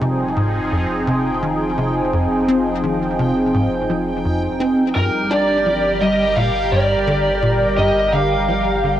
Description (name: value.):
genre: ambient, sequencer-driven space music.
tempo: 85 BPM.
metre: 4/4.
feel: straight.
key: unclear.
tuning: A4 = 440 Hz.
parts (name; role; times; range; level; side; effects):
sweeping resonant pad; sustained chords; 0.0-9.0 s; F3 to Bb4; -20 LUFS; equal; chorus.
tight sequencer bass; riff; 0.0-9.0 s; F2 to D4; -21 LUFS; left 1 dB; ensemble chorus, ping-pong delay.
round analog bass; bass; 0.0-9.0 s; F1 to G1; -30 LUFS; equal; none.
bubbling stepped-filter texture; texture; 0.0-9.0 s; G5; -31 LUFS; right 3 dB; chorus, built-in reverb, plate reverb.
lead guitar through a small cranked amp; melody; 5.0-9.0 s; Bb4 to F5; -18 LUFS; right 1 dB; overdrive, cassette tape, plate reverb, ping-pong delay.
room: wet booth ambience, RT60 0.2 s.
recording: home recording on cassette.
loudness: -15 LUFS.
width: side -11 dB against mid.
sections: 0.0-9.0 A section.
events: fade-in on analog synth bass 0.0-9.0; fade-in on synth texture 0.0-9.0.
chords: 0.0 Fm7; 5.0 Gm.